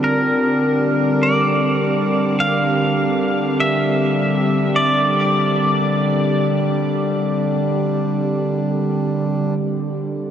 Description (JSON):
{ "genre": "ambient", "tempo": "51 BPM", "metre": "4/4", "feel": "straight", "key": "G dorian", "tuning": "A4 = 440 Hz", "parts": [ { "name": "pedal steel guitar", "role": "melody", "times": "0.0-6.5 s", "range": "Bb4 to F5", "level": "-21 LUFS", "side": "equal", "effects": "shimmer reverb, diffuse ambient delay" }, { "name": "warbly tape-like pad", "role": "sustained chords", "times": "0.0-10.3 s", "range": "D3 to Bb4", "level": "-18 LUFS", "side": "equal", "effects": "chorus, built-in reverb, shimmer reverb" }, { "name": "hand-pumped harmonium", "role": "drone", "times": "0.0-9.5 s", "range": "G3 to D4", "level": "-24 LUFS", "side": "equal", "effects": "none" } ], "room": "wet huge ambient reverb, RT60 7.6 s", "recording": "dark, warm production", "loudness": "-16 LUFS", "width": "side -9 dB against mid", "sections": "0.0-9.4 A section", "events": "none", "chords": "0.0 Gm; 9.4 G5", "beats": "| 0.02 1.20 2.37 3.55 | 4.73 5.90 7.08 8.26 | 9.43" }